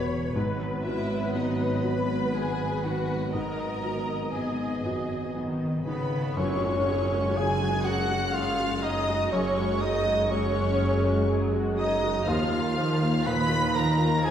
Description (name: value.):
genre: cinematic, emotional film score for orchestra.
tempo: 61 BPM.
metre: 3/4.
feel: rubato.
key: F# major from 6.4 s.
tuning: A4 = 442 Hz.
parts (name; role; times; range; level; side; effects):
warm symphonic violin section; melody; 0.0-14.3 s; D#5 to B6; -36 LUFS; left 2 dB; none.
rich studio violin section; second line; 0.0-14.3 s; D#4 to B5; -34 LUFS; equal; none.
felt-muted upright piano; accompaniment; 0.0-14.3 s; D#2 to F#4; -33 LUFS; left 1 dB; none.
warm symphonic viola section; accompaniment; 0.0-14.3 s; E#3 to D#5; -32 LUFS; equal; none.
dark French horn section; sustained chords; 0.0-14.3 s; D#3 to D#4; -33 LUFS; left 1 dB; none.
rich studio double bass section; bass; 0.0-14.3 s; E1 to D#2; -33 LUFS; right 2 dB; none.
rich symphonic cello section; bass; 0.0-14.3 s; D#2 to D#3; -32 LUFS; right 1 dB; none.
cymbal swell and tam-tam; percussion; 3.4-10.3 s; none; -39 LUFS; left 2 dB; none.
hollow small flute group; second line; 5.9-14.3 s; B4 to B5; -31 LUFS; equal; none.
mellow cor anglais; second line; 5.9-14.3 s; B3 to B4; -33 LUFS; right 1 dB; none.
room: wet scoring stage reverb, RT60 2.0 s.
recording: heard from further back in the room.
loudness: -24 LUFS.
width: side -9 dB against mid.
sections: 0.0-6.4 A section; 6.4-14.3 B section.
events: band accent 6.4-7.4.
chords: 0.4 G#m7; 6.4 F#sus2; 12.3 D#sus2.